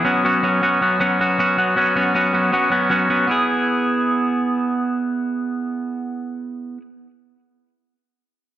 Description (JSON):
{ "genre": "rock", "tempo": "157 BPM", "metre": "4/4", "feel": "straight", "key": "E major", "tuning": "A4 = 440 Hz", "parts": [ { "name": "twangy electric guitar", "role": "solo", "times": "0.0-6.8 s", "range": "F#3 to G#4", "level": "-17 LUFS", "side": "right 1 dB", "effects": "spring reverb, digital delay" } ], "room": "moderate studio reverb, RT60 0.8 s", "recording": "dark, warm production", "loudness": "-17 LUFS", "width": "side -11 dB against mid", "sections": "0.0-3.3 A section; 3.3-6.3 B section", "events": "none", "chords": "0.0 Bsus2; 3.3 E", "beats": "| 0.23 0.61 0.99 1.37 | 1.75 2.14 2.52 2.90 | 3.28 3.66 4.05 4.43 | 4.81 5.19 5.58 5.96" }